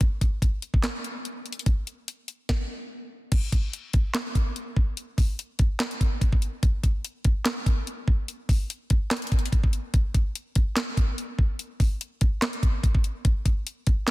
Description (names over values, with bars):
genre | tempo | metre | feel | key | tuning
hip hop | 145 BPM | 4/4 | half-time | none | none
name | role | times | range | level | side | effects
trap drum kit | drums | 0.0-14.1 s | crash cymbal, handclaps, hi-hat, kick drum, snare drum | -23 LUFS | equal | none
room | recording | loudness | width
little or no reverb | dense, heavily limited modern master | -23 LUFS | side -19 dB against mid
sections
0.0-3.3 A section; 3.3-14.1 B section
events
none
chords
none